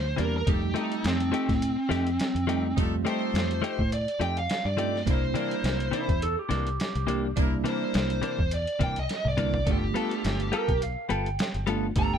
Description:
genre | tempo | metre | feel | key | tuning
straight-eighth soul blues | 104 BPM | 4/4 | swing 55% on 16ths | C mixolydian | A4 = 440 Hz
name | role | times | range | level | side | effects
smooth overdriven lead guitar | melody | 0.0-12.2 s | C4 to Bb5 | -30 LUFS | right 1 dB | none
fingered electric bass | bass | 0.0-12.2 s | G1 to A2 | -30 LUFS | equal | none
bell-like tine electric piano | accompaniment | 0.2-12.2 s | G3 to G4 | -31 LUFS | right 4 dB | medium stereo tremolo
direct-recorded clean electric guitar | stabs | 0.2-11.9 s | C3 to A4 | -32 LUFS | left 7 dB | none
trip hop sampler-style drum kit | drums | 0.2-12.1 s | hi-hat, kick drum, snare drum, toms | -30 LUFS | equal | none
brilliant horn section | sustained chords | 0.5-12.1 s | A3 to Bb4 | -38 LUFS | left 1 dB | none
clean lap steel guitar | second line | 5.9-11.8 s | E4 to G5 | -32 LUFS | right 4 dB | none
room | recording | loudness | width
little or no reverb | none | -24 LUFS | side -8 dB against mid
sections
0.0-12.2 A section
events
drum fill 9.1-9.7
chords
0.5 F9; 5.1 C9; 9.7 G9

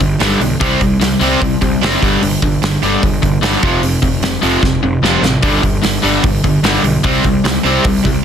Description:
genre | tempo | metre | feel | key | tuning
punk rock | 149 BPM | 4/4 | straight | unclear | A4 = 441 Hz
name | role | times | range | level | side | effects
crunchy overdriven guitar | riff | 0.0-8.2 s | F2 to C4 | -17 LUFS | right 11 dB | none
overdriven electric guitar | riff | 0.0-8.2 s | F2 to C4 | -16 LUFS | left 9 dB | none
fuzz picked electric bass | bass | 0.0-8.2 s | F1 to C2 | -19 LUFS | equal | overdrive
loose indie drum kit | drums | 0.0-8.1 s | hi-hat, kick drum, snare drum | -17 LUFS | right 1 dB | none
room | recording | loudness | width
little or no reverb | dense, heavily limited modern master | -11 LUFS | side -8 dB against mid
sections
0.0-8.2 A section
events
drum fill 4.6-5.4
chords
0.0 G; 0.6 C5; 2.0 G5; 3.6 F5; 5.4 G5; 7.0 C5

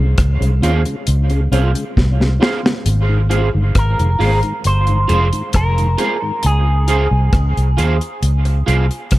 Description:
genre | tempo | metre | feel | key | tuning
dub reggae | 67 BPM | 4/4 | straight | unclear | A4 = 440 Hz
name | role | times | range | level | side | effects
mellow tonewheel organ | accompaniment | 0.0-6.3 s | Ab2 to F4 | -26 LUFS | left 2 dB | chorus vibrato, slow rotary speaker, dub echo
vintage muted fingered electric bass | bass | 0.0-9.2 s | F1 to Eb2 | -14 LUFS | equal | none
deep reggae drum kit | drums | 0.2-9.2 s | hi-hat, kick drum, rim click, snare drum | -18 LUFS | equal | none
electric guitar at the edge of break-up | accompaniment | 0.6-8.9 s | F4 to C5 | -23 LUFS | right 4 dB | ensemble chorus, dub echo
electric guitar with an envelope filter | melody | 3.8-7.4 s | Ab4 to C5 | -21 LUFS | right 1 dB | dub echo
room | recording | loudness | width
small room ambience | echo-heavy mix | -13 LUFS | side -17 dB against mid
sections
0.0-9.2 A section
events
break 0.0-2.9; drum fill 2.0-2.9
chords
0.0 Dbmaj7; 2.9 Ab6; 6.4 Dbmaj7

